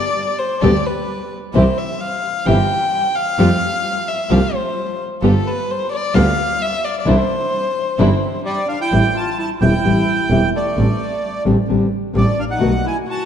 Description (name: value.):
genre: tango.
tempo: 130 BPM.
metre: 4/4.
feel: rubato.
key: C major, A minor from 8.9 s.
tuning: A4 = 440 Hz.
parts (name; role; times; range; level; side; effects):
warm violin; second line; 0.0-13.3 s; G3 to G5; -21 LUFS; left 2 dB; none.
nylon-string guitar; accompaniment; 0.6-12.7 s; B2 to G4; -19 LUFS; left 2 dB; none.
dark studio string section; stabs; 0.6-8.2 s; A3 to A4; -28 LUFS; right 3 dB; none.
clear double bass; bass; 0.6-12.8 s; E1 to F2; -19 LUFS; right 2 dB; none.
bandoneon; melody; 8.5-13.3 s; D5 to A5; -21 LUFS; right 3 dB; none.
room: moderate concert hall reverb, RT60 2.4 s.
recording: dark, warm production.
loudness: -15 LUFS.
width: side -8 dB against mid.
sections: 0.0-8.9 A section; 8.9-13.3 B section.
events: violin solo 0.0-8.9.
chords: 0.0 Gadd9; 1.5 C; 3.4 Fadd9; 5.2 G7; 7.1 Cadd9; 8.9 Am7; 10.8 D7sus4/A; 12.6 B7.